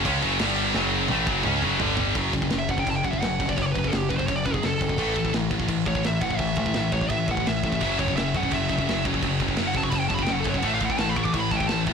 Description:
heavy metal; 170 BPM; 4/4; straight; F# phrygian; A4 = 440 Hz
heavy high-gain guitar; riff; 0.0-11.9 s; F#2 to C#4; -30 LUFS; right 14 dB; distortion
high-gain distorted guitar; riff; 0.0-2.2, 7.8-11.9 s; F#2 to C#4; -28 LUFS; right 1 dB; distortion
scooped high-gain guitar; riff; 0.0-11.9 s; F#2 to C#4; -28 LUFS; left 11 dB; distortion
growling picked electric bass; bass; 0.0-11.9 s; F#1 to C#2; -30 LUFS; right 1 dB; overdrive
tight metal drum kit; drums; 0.1-11.9 s; crash cymbal, kick drum, snare drum, toms; -29 LUFS; right 1 dB
high-gain lead guitar; melody; 2.6-11.8 s; G4 to D6; -28 LUFS; equal; distortion
small room ambience; blown-out, overdriven recording, overdrive; -22 LUFS; side -6 dB against mid
0.0-2.2 A section; 2.2-11.9 B section
drum fill 0.8-2.2; lead electric guitar solo 2.2-11.9
0.4 G5; 0.8 F#m; 1.8 G5; 2.2 F#5; 5.0 A5; 7.8 F#5; 10.6 A5

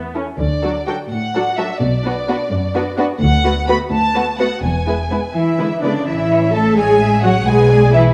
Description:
quick classical-period movement for string orchestra; 85 BPM (dotted quarters); 6/8; straight; A major from 3.2 s; A4 = 440 Hz
warm studio viola section; accompaniment; 0.0-8.1 s; F#3 to A4; -21 LUFS; equal
rich symphonic cello section; bass; 0.0-8.1 s; D2 to A3; -23 LUFS; equal
warm symphonic violin section; second line; 0.2-8.0 s; E4 to A5; -23 LUFS; equal
warm studio violin section; melody; 0.4-8.1 s; B4 to B5; -25 LUFS; equal
warm symphonic double bass section; bass; 0.4-8.1 s; E1 to D2; -20 LUFS; equal
moderate scoring stage reverb, RT60 1.6 s; dark, warm production; -16 LUFS; mono
0.0-6.1 A section; 6.1-8.1 B section
0.4 D; 1.8 Bm; 3.2 Bm7/D; 4.6 E; 6.1 A; 7.5 G#dim/B

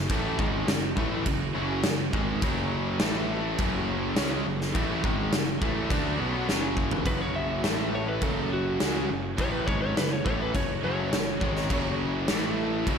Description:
hard rock; 104 BPM; 4/4; straight; F# minor; A4 = 441 Hz
tonewheel organ; sustained chords; 0.0-13.0 s; F#3 to G#5; -41 LUFS; right 1 dB
biting overdriven guitar; riff; 0.0-13.0 s; F#2 to D4; -34 LUFS; right 8 dB; slapback echo
crunchy overdriven guitar; riff; 0.0-13.0 s; F#2 to D4; -33 LUFS; left 9 dB; spring reverb, slapback echo
scooped high-gain guitar; riff; 0.0-13.0 s; F#2 to D4; -35 LUFS; equal; distortion, slapback echo
fuzz picked electric bass; bass; 0.0-13.0 s; F#1 to D2; -33 LUFS; equal; overdrive
huge arena drum kit; drums; 0.1-13.0 s; crash cymbal, kick drum, snare drum, toms; -29 LUFS; equal
lightly driven lead guitar; melody; 7.1-12.0 s; F#4 to E5; -32 LUFS; left 1 dB; slapback echo
moderate lush hall reverb, RT60 2.0 s; big arena sound; -25 LUFS; side -6 dB against mid
0.0-7.1 A section; 7.1-13.0 B section
drum fill 6.5-7.1; lead electric guitar solo 7.1-13.0
0.0 F#m; 3.0 A5; 3.6 F#m; 7.1 F#5; 7.6 A5; 8.2 F#m; 12.3 A5

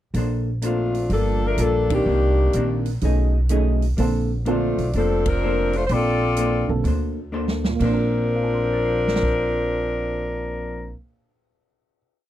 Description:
jazz, big band swing; 126 BPM; 4/4; swing 68% on 8ths; Bb major; A4 = 440 Hz
vintage hollow-body jazz guitar; accompaniment; 0.1-11.4 s; B2 to C5; -28 LUFS; left 2 dB
upright bass; bass; 0.1-10.9 s; F1 to D2; -23 LUFS; equal
swinging big-band drum kit; drums; 0.1-9.4 s; crash cymbal, hi-hat, kick drum, ride cymbal, snare drum; -29 LUFS; right 1 dB
mellow saxophone section; melody; 0.6-11.0 s; Eb3 to D5; -22 LUFS; left 2 dB
dark upright piano; accompaniment; 1.9-12.0 s; Bb2 to C7; -28 LUFS; right 6 dB
little or no reverb; dry, close 1970s-style studio recording; -19 LUFS; side -12 dB against mid
0.1-7.8 A section; 7.8-11.6 final chord
band accent 1.8, 5.2; drum fill 7.3-7.8
0.1 Bbmaj9; 1.1 Gm9; 2.1 Cm9; 3.0 B13; 4.0 Bbmaj9

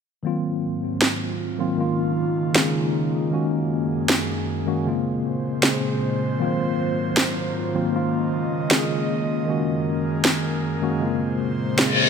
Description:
future bass; 156 BPM; 4/4; half-time; Db major; A4 = 440 Hz
mellow tine electric piano; accompaniment; 0.2-12.1 s; Db3 to Ab4; -23 LUFS; left 1 dB; medium stereo tremolo, tape echo
airy breathy pad; sustained chords; 0.5-12.1 s; Gb2 to Eb5; -28 LUFS; right 2 dB; chorus
electronic snare drum; drums; 1.0-11.9 s; -21 LUFS; right 1 dB; studio ambience
reverse cymbal; sound effects; 11.9-12.1 s; -17 LUFS; left 3 dB
moderate lush hall reverb, RT60 1.9 s; -20 LUFS; side -6 dB against mid
0.2-12.1 A section
filter sweep on analog synth pad 0.2-12.1; reverse cymbal 11.9
0.2 Ab13; 1.8 Db69; 3.3 Gb69; 4.9 Bbm9; 6.4 Ab13; 7.9 Db69; 9.5 Gb69; 11.0 Bbm9

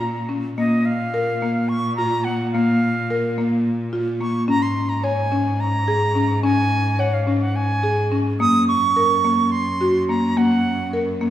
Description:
contemporary instrumental, contemporary; 214 BPM (eighths); 7/8; straight; Bb minor; A4 = 442 Hz
bright reedy silver concert flute; melody; 0.0-11.0 s; Eb5 to Eb6; -22 LUFS; right 3 dB
buzzing marimba with medium hard mallets; arpeggios; 0.0-11.3 s; Bb3 to Db5; -20 LUFS; left 2 dB
rich cello; bass; 0.0-11.3 s; Gb2 to Bb2; -25 LUFS; equal
wet recital hall reverb, RT60 1.7 s; recorded in a church or concert hall; -18 LUFS; side -12 dB against mid
0.6-11.3 A section
0.0 Bbm; 0.6 Bb5; 4.5 Absus4; 8.4 Gb

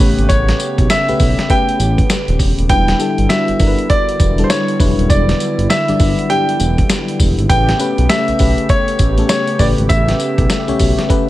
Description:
R&B, new jack swing; 100 BPM; 4/4; swing 62% on 16ths; A4 = 441 Hz
clear baby grand piano; melody; 0.0-11.3 s; B4 to G5; -18 LUFS; equal; tube saturation
FM electric piano; accompaniment; 0.0-11.3 s; C#3 to D5; -19 LUFS; left 3 dB; chorus
brassy analog pad; sustained chords; 0.0-11.3 s; C#3 to G4; -23 LUFS; right 2 dB; chorus
smooth synth bass; bass; 0.0-10.9 s; D#1 to B1; -16 LUFS; equal
dusty soul sampler-style drum kit; drums; 0.0-11.3 s; hi-hat, kick drum, snare drum, tambourine; -16 LUFS; equal
little or no reverb; -12 LUFS; side -15 dB against mid
0.0-11.3 A section
0.0 A9; 2.7 Em7; 7.5 A9

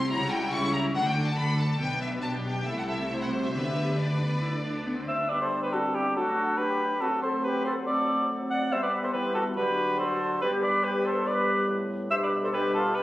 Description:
quick classical-period movement for symphony orchestra; 141 BPM; 4/4; straight; G major; A4 = 445 Hz
warm studio violin section; melody; 0.0-5.1 s; D5 to C#6; -31 LUFS; left 2 dB
rich chamber violin section; second line; 0.0-5.1 s; E4 to C5; -37 LUFS; left 1 dB
warm chamber viola section; accompaniment; 0.0-5.3 s; G3 to G4; -34 LUFS; equal
rich chamber double bass section; bass; 0.0-5.1 s; B1 to D2; -34 LUFS; equal
warm studio cello section; bass; 0.0-5.1 s; B2 to D3; -31 LUFS; equal
bright flute section; second line; 5.1-13.0 s; E4 to D5; -32 LUFS; left 1 dB
mellow cor anglais; second line; 5.1-13.0 s; G4 to F#5; -27 LUFS; equal
warm clarinet; second line; 5.3-13.0 s; B3 to G4; -33 LUFS; left 1 dB
warm bassoon; accompaniment; 5.3-13.0 s; G2 to G3; -35 LUFS; equal
mellow French horn section; sustained chords; 5.3-13.0 s; F#3 to D4; -35 LUFS; equal
moderate concert hall reverb, RT60 1.9 s; recorded on a phone in the room, club reverb, compression; -25 LUFS; side -16 dB against mid
0.0-5.3 A section; 5.3-13.0 B section
0.1 C#dim; 1.0 D; 1.8 G/B; 2.7 Am/C; 3.5 G/D; 4.4 Cmaj9/D; 5.3 G; 6.2 D/F#; 7.0 D7/F#; 8.7 G; 9.6 D7; 10.4 G; 12.1 G/B

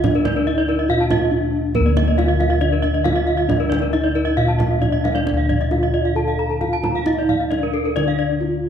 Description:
Balinese gamelan; 137 BPM; 4/4; uneven beats; D pelog; A4 = 441 Hz
gamelan-type bronze metallophone; melody; 0.0-8.7 s; Bb3 to A4; -22 LUFS; equal
gamelan-type bronze metallophone; arpeggios; 0.0-8.3 s; A4 to Bb5; -25 LUFS; left 5 dB
gamelan-type bronze metallophone; arpeggios; 0.0-8.2 s; Bb4 to A5; -26 LUFS; right 5 dB
gamelan-type bossed gongs; bass; 0.0-8.7 s; D2 to Bb4; -20 LUFS; equal
kendang; percussion; 0.0-8.1 s; -26 LUFS; right 3 dB
moderate concert hall reverb, RT60 1.9 s; dark, warm production; -16 LUFS; side -8 dB against mid
0.0-5.3 A section; 5.3-8.7 B section
drum fill 4.9-5.3

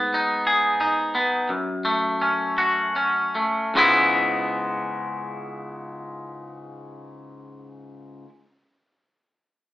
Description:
rock; 73-91 BPM; 3/4; straight; C# minor; A4 = 441 Hz
twangy electric guitar; arpeggios; 0.0-8.3 s; C#2 to G#4; -20 LUFS; equal
wet studio reverb, RT60 0.7 s; band playing live in one room, AM radio sound; -19 LUFS; side -15 dB against mid
0.0-3.8 A section; 3.8-8.7 B section
slowing down 0.0-3.8
0.0 G#m; 1.5 F#m; 3.8 C#m7

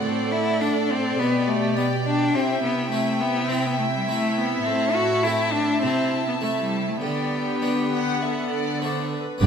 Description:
classical, baroque-style concerto movement with solo episodes; 103 BPM; 4/4; straight; G major; A4 = 440 Hz
rich cello; melody; 0.0-9.5 s; D3 to F#4; -24 LUFS; left 2 dB
rich chamber violin section; melody; 0.0-9.5 s; D5 to A5; -32 LUFS; left 4 dB
warm chamber violin section; second line; 0.0-9.5 s; G4 to F#5; -28 LUFS; left 1 dB
harpsichord; accompaniment; 0.0-9.5 s; G2 to E4; -31 LUFS; left 2 dB
warm chamber viola section; accompaniment; 0.0-9.5 s; B3 to A4; -31 LUFS; right 4 dB
rich chamber cello section; bass; 0.0-9.5 s; G2 to D3; -28 LUFS; right 5 dB
rich chamber double bass section; bass; 9.4-9.5 s; G1; -17 LUFS; right 2 dB
moderate recital hall reverb, RT60 1.6 s; -21 LUFS; side -7 dB against mid
0.0-9.4 A section
0.0 D/A; 1.2 G/B; 2.3 C; 4.7 Am; 5.8 Am/C; 7.0 G/D; 8.2 D

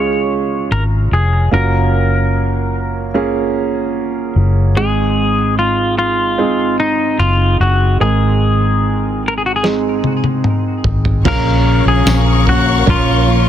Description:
pop ballad; 74 BPM; 4/4; straight; A4 = 440 Hz
clean electric guitar; melody; 0.0-13.5 s; Eb4 to Db5; -18 LUFS; left 2 dB; tape echo
warm baby grand piano; accompaniment; 0.0-13.5 s; Ab2 to F5; -18 LUFS; right 4 dB
vintage muted fingered electric bass; bass; 0.0-13.5 s; F1 to Db2; -15 LUFS; left 1 dB
lo-fi sampler-style drum kit; drums; 9.6-13.1 s; crash cymbal, kick drum, snare drum, toms; -18 LUFS; left 1 dB
rich symphonic string section; sustained chords; 11.2-13.5 s; Bb4 to Db6; -20 LUFS; left 4 dB
fingerpicked steel-string acoustic guitar; arpeggios; 11.2-13.5 s; Bb2 to F4; -20 LUFS; left 11 dB
tambourine; percussion; 12.1-12.3 s; -32 LUFS; right 3 dB
light reverb; dense, heavily limited modern master; -12 LUFS; side -10 dB against mid
0.0-11.3 A section; 11.3-13.5 B section
drum fill 9.6-11.3
0.0 Db; 1.5 Gbmaj7; 4.8 Ab; 11.3 Bbm

